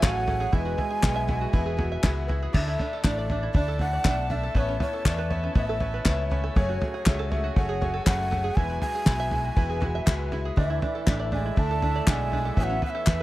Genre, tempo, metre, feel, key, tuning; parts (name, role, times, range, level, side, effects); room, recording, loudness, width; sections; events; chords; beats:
indie folk with a building arrangement; 120 BPM; 4/4; straight; A4 = 439 Hz
breathy mellow long shakuhachi; melody; 0.0-13.2 s; C#5 to A5; -31 LUFS; right 1 dB; slapback echo
clear French horn; second line; 0.0-2.0, 10.6-13.2 s; E3 to A3; -35 LUFS; right 10 dB
bright upright piano; accompaniment; 0.0-13.2 s; F#1 to F#5; -37 LUFS; left 1 dB
picked plugged-in twelve-string acoustic guitar; accompaniment; 0.0-13.2 s; E2 to G#4; -36 LUFS; left 7 dB
clear brass ensemble; sustained chords; 0.0-13.2 s; E4 to A5; -39 LUFS; equal
open-back banjo; arpeggios; 0.0-13.2 s; A3 to E5; -35 LUFS; right 5 dB
fingered electric bass; bass; 0.0-13.2 s; E1 to E2; -29 LUFS; equal
cloth-damped thuddy drum kit; drums; 0.0-13.2 s; crash cymbal, kick drum, snare drum, toms; -24 LUFS; equal
group handclap; percussion; 0.0-13.2 s; -32 LUFS; left 4 dB
small room ambience; dry, close 1970s-style studio recording; -23 LUFS; side -16 dB against mid
0.0-2.5 A section; 2.5-13.2 A section
0.0 F#madd9; 0.5 Eadd9; 2.5 Dsus2; 4.6 Aadd9; 6.6 F#madd9; 8.6 Eadd9; 10.6 Dsus2; 12.6 Aadd9
0.03 | 0.53 1.04 1.54 2.04 | 2.54 3.05 3.55 4.05 | 4.55 5.06 5.56 6.06 | 6.56 7.06 7.57 8.07 | 8.57 9.07 9.57 10.07 | 10.57 11.07 11.57 12.07 | 12.57 13.07